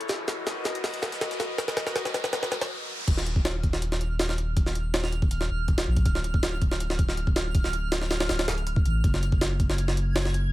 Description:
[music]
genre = drum and bass, jungle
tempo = 161 BPM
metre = 4/4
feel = straight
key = Eb minor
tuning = A4 = 439 Hz
[part]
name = warbly tape-like pad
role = sustained chords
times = 0.0-2.5 s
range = F#4 to D#5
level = -34 LUFS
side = left 2 dB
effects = chorus, built-in reverb
[part]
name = jungle sampler-style drum kit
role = drums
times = 0.0-10.4 s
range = crash cymbal, hi-hat, kick drum, snare drum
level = -26 LUFS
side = equal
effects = none
[part]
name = riser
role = sound effects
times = 0.0-3.1 s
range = none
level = -36 LUFS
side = equal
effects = none
[part]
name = crunchy breakbeat drum kit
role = drums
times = 0.1-2.7 s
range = hi-hat, shaker, snare drum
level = -42 LUFS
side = left 4 dB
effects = none
[part]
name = soft dub sub bass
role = bass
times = 3.1-10.5 s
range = D1 to Bb1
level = -27 LUFS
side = equal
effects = none
[part]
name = twinkling granular texture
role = texture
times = 3.5-10.5 s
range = F6 to Ab6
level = -37 LUFS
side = right 4 dB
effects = built-in reverb
[sound]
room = small room ambience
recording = vinyl crackle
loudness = -24 LUFS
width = side -17 dB against mid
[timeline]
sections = 0.0-3.1 A section; 3.1-10.5 B section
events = build-up 0.0-3.1; drum fill 0.0-2.7; riser 0.0-3.1; stop 2.7-3.1; drop 3.1-10.5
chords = 0.1 Bmaj7/F#; 3.1 Ebsus2; 6.1 Dm; 9.0 Gbsus2

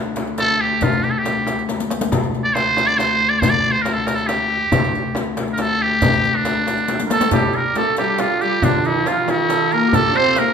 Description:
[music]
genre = Persian modal ensemble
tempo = 92 BPM (dotted quarters)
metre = 6/8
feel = straight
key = D dastgah shur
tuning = A4 = 441 Hz
[part]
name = santur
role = second line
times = 0.0-0.1, 7.1-10.5 s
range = D4 to C5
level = -20 LUFS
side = right 6 dB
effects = none
[part]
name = rich cello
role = drone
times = 0.0-7.4 s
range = D2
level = -25 LUFS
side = left 5 dB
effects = none
[part]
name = frame drum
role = percussion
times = 0.2-10.5 s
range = none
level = -24 LUFS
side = left 3 dB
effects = none
[part]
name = riq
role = percussion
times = 0.2-10.5 s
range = none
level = -28 LUFS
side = left 5 dB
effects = none
[part]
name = tombak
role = percussion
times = 0.2-10.5 s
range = none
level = -26 LUFS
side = right 2 dB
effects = none
[part]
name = trumpet with metal mute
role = melody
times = 0.4-10.5 s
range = D4 to D5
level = -18 LUFS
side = right 1 dB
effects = none
[part]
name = clear studio cello section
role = second line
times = 7.1-10.5 s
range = D3 to D4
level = -22 LUFS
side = left 3 dB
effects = none
[sound]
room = wet recital hall reverb, RT60 1.5 s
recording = minimal, uncompressed stereo recording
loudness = -16 LUFS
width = side -7 dB against mid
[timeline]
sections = 0.0-7.3 A section; 7.3-10.5 B section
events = drum fill 1.7-2.1, 6.9-7.3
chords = none

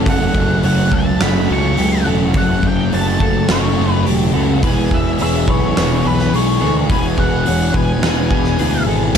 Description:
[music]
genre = rock, shoegaze and dream pop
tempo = 106 BPM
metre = 4/4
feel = straight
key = unclear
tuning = A4 = 440 Hz
[part]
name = twelve-string electric guitar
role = arpeggios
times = 0.0-9.1 s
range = G4 to C#5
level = -26 LUFS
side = left 4 dB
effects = wide subtle chorus, analog delay
[part]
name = overdriven semi-hollow guitar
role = riff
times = 0.0-9.1 s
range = E2 to G#4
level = -20 LUFS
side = right 12 dB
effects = reverse reverb
[part]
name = thick fuzz guitar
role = riff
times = 0.0-9.2 s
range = E2 to A3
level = -19 LUFS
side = left 10 dB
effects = distortion, lush chorus
[part]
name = fuzz picked electric bass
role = bass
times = 0.0-9.2 s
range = E1 to D2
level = -19 LUFS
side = equal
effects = overdrive
[part]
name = octave-fuzz lead guitar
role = melody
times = 0.1-8.8 s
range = B4 to C#6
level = -23 LUFS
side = equal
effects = distortion, analog delay
[part]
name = huge arena drum kit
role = drums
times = 0.1-9.2 s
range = crash cymbal, hi-hat, kick drum, snare drum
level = -20 LUFS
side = equal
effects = none
[sound]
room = small room ambience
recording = dark, warm production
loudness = -13 LUFS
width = side -7 dB against mid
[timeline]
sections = 0.0-9.2 A section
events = none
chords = 0.1 F#m; 4.6 E

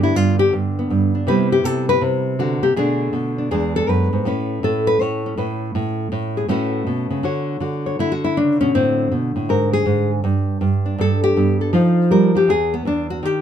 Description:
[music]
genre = solo jazz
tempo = 160 BPM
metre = 4/4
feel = swing 65% on 8ths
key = A major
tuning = A4 = 439 Hz
[part]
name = nylon-string guitar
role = solo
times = 0.0-13.4 s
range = E2 to C#5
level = -16 LUFS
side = equal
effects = none
[sound]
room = light reverb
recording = close, detailed microphones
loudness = -16 LUFS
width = side -9 dB against mid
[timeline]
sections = 0.0-7.2 A section; 7.2-13.4 A section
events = nylon-string guitar solo 0.0-13.4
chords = 0.0 G; 1.3 Cmaj9; 2.8 Bm7; 3.5 E7; 4.2 Aadd9; 6.5 A69; 7.2 Dmaj7; 8.7 Amadd9; 9.5 Bb7/Ab; 10.2 Gadd9; 11.7 F5; 12.5 N.C.

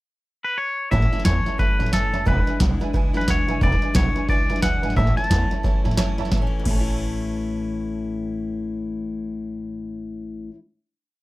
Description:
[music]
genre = rockabilly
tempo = 178 BPM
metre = 4/4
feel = swing 61% on 8ths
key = A major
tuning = A4 = 440 Hz
[part]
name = twangy electric guitar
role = melody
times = 0.4-5.8 s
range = A4 to A5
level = -25 LUFS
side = left 1 dB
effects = tape echo
[part]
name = honky-tonk upright piano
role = accompaniment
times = 0.9-10.5 s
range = B4 to A5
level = -32 LUFS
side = right 11 dB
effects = none
[part]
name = picked steel-string acoustic guitar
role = accompaniment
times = 0.9-10.6 s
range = E2 to E4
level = -28 LUFS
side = left 3 dB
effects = none
[part]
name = upright bass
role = bass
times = 0.9-10.5 s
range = E1 to A2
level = -24 LUFS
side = equal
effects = none
[part]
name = booming analog drum machine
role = drums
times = 0.9-6.8 s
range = crash cymbal, hi-hat, kick drum, snare drum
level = -22 LUFS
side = equal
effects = overdrive
[sound]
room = little or no reverb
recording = none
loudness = -20 LUFS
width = side -18 dB against mid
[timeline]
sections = 0.0-0.9 pickup bar; 0.9-6.3 A section; 6.3-9.0 final chord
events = none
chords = 0.0 N.C.; 0.9 A; 2.3 E7; 5.0 A

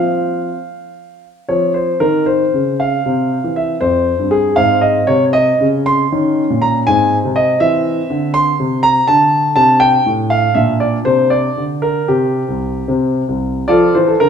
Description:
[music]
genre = classical-period piano sonatina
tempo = 74-83 BPM (dotted quarters)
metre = 6/8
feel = rubato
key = F minor, F major from 7.6 s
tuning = A4 = 440 Hz
[part]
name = warm concert grand piano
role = solo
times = 0.0-14.3 s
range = C2 to C6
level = -12 LUFS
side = equal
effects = none
[sound]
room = moderate recital hall reverb, RT60 1.5 s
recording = minimal, uncompressed stereo recording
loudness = -12 LUFS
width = side -7 dB against mid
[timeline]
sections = 0.0-1.5 A section; 1.5-13.7 B section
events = none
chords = 0.0 F5; 3.1 C; 3.8 F5; 4.6 Ab; 6.1 Eb5; 6.9 Ab; 7.6 C; 9.1 D5; 10.6 Bbadd9; 12.1 N.C.; 13.7 F

